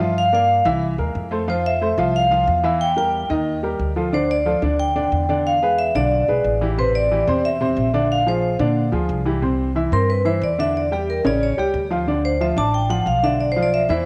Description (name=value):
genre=Afro-Cuban jazz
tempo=181 BPM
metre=4/4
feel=straight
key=C major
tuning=A4 = 441 Hz
part: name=vibraphone with medium hard mallets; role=melody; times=0.0-14.1 s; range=G4 to A5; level=-22 LUFS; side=equal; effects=none
part: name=warm upright piano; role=accompaniment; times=0.0-14.1 s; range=C3 to D6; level=-24 LUFS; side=equal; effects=cassette tape
part: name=upright bass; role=bass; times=0.0-14.1 s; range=A1 to Bb2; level=-26 LUFS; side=equal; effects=none
room=moderate lush hall reverb, RT60 2.6 s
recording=home recording on cassette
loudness=-19 LUFS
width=mono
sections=0.0-9.4 A section; 9.4-14.1 B section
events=vibraphone solo 9.4-14.1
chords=0.2 Gm7; 0.8 C7alt; 1.5 Fmaj7; 2.8 Edim; 3.5 Eb; 4.1 Dmadd9; 5.5 E7b9; 6.8 Am; 8.1 Bb9; 9.4 C; 10.7 A7b9; 11.4 A7; 12.1 Dm; 13.4 Bdim